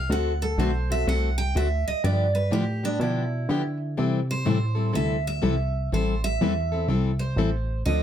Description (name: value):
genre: acoustic string swing (jazz manouche)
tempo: 124 BPM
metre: 4/4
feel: swing 65% on 8ths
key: unclear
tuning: A4 = 440 Hz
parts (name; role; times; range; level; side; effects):
- picked steel-string acoustic guitar; melody; 0.0-8.0 s; D4 to G5; -29 LUFS; right 4 dB; none
- plucky analog bass; bass; 0.0-8.0 s; A1 to D3; -25 LUFS; right 1 dB; none
- picked plugged-in steel-string acoustic guitar; accompaniment; 0.1-8.0 s; C3 to A4; -28 LUFS; left 5 dB; none
room: light reverb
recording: close, detailed microphones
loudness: -22 LUFS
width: side -10 dB against mid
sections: 0.0-8.0 A section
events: steel-string acoustic guitar solo 0.0-8.0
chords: 0.1 D7; 2.0 G7; 4.0 C6; 5.9 Am7